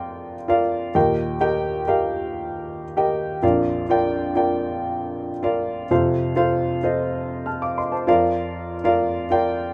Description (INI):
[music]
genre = pop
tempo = 97 BPM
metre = 4/4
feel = straight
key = Bb major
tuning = A4 = 437 Hz
[part]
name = warm upright piano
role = solo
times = 0.0-9.7 s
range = Bb1 to F6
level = -22 LUFS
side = equal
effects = none
[sound]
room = wet studio ambience, RT60 0.5 s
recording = rough home demo mix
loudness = -22 LUFS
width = mono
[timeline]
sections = 0.0-9.7 A section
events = none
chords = 0.0 Bb/F; 0.9 Eb; 3.4 Bb; 5.9 F; 8.1 Bb/F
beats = 0.33 | 0.95 1.57 2.19 2.81 | 3.43 4.05 4.67 5.29 | 5.91 6.53 7.15 7.77 | 8.39 9.01 9.63